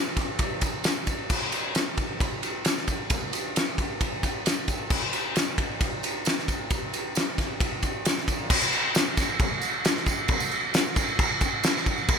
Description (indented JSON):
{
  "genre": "rock",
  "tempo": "133 BPM",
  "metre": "4/4",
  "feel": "straight",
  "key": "none",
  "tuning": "none",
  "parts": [
    { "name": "loose indie drum kit", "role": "drums", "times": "0.2-12.2 s", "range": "crash cymbal, kick drum, ride cymbal, snare drum", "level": "-24 LUFS", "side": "equal", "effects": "none" },
    { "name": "tambourine", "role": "percussion", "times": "0.4-12.0 s", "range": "none", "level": "-38 LUFS", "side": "right 5 dB", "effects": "none" }
  ],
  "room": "light reverb, small room ambience",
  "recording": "none",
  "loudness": "-24 LUFS",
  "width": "side -6 dB against mid",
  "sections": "0.0-8.5 A section; 8.5-12.2 B section",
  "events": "none",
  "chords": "none"
}